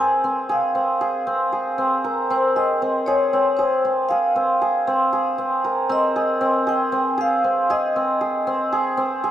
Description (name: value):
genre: contemporary instrumental, chamber music in an uneven meter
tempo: 233 BPM (eighths)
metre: 7/8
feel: straight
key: F minor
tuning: A4 = 440 Hz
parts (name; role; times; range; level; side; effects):
- vibraphone with medium mallets; melody; 0.0-8.7 s; C5 to Ab5; -22 LUFS; left 1 dB; none
- hammered dulcimer; arpeggios; 0.0-9.3 s; C4 to Bb4; -20 LUFS; right 1 dB; none
room: wet recital hall reverb, RT60 1.6 s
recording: dark, warm production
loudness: -18 LUFS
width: side -11 dB against mid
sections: 0.0-5.9 A section; 5.9-9.3 B section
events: none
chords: 0.0 Fm